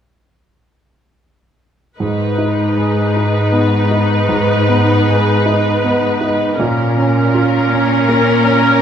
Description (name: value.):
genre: cinematic, emotional film score for orchestra.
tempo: 79 BPM.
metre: 3/4.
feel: rubato.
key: G# minor.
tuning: A4 = 440 Hz.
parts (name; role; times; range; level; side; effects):
clear grand piano; accompaniment; 2.0-8.8 s; G#2 to G#4; -15 LUFS; right 2 dB; none.
rich symphonic viola section; accompaniment; 2.0-8.8 s; C#4 to B4; -16 LUFS; left 1 dB; none.
rich symphonic cello section; bass; 2.0-8.8 s; G#2 to A#2; -19 LUFS; left 2 dB; none.
room: wet recital hall reverb, RT60 1.3 s.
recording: recorded in a church or concert hall.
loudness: -12 LUFS.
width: side -8 dB against mid.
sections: 2.0-8.8 A section.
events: none.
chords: 2.0 G#m; 6.6 A#m.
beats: | 1.99 2.77 3.54 | 4.30 5.07 5.83 | 6.58 7.33 8.08.